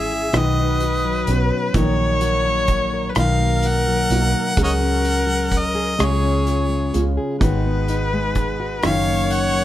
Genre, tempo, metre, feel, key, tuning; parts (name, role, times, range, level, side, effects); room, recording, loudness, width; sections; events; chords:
acoustic folk-pop ballad; 42 BPM (dotted quarters); 6/8; straight; F# major; A4 = 440 Hz
bright harmonica; melody; 0.0-9.6 s; C#5 to F#5; -23 LUFS; equal
clear viola; second line; 0.0-9.6 s; G#4 to C#5; -24 LUFS; left 2 dB
fingerpicked plugged-in steel-string acoustic guitar; accompaniment; 0.0-9.6 s; F#2 to B4; -24 LUFS; left 3 dB
felt-muted upright piano; arpeggios; 0.0-9.6 s; D#3 to F#4; -26 LUFS; right 1 dB
vintage muted fingered electric bass; bass; 0.0-9.6 s; F#1 to C#2; -22 LUFS; equal
loose indie drum kit; drums; 0.3-9.5 s; hi-hat, kick drum, rim click; -24 LUFS; equal
light reverb; -17 LUFS; side -13 dB against mid
0.0-9.6 A section
0.3 Badd9; 1.7 F#6/A#; 3.2 Bmaj7; 4.6 C#sus4; 6.0 C#; 7.4 G#m7; 8.8 F#6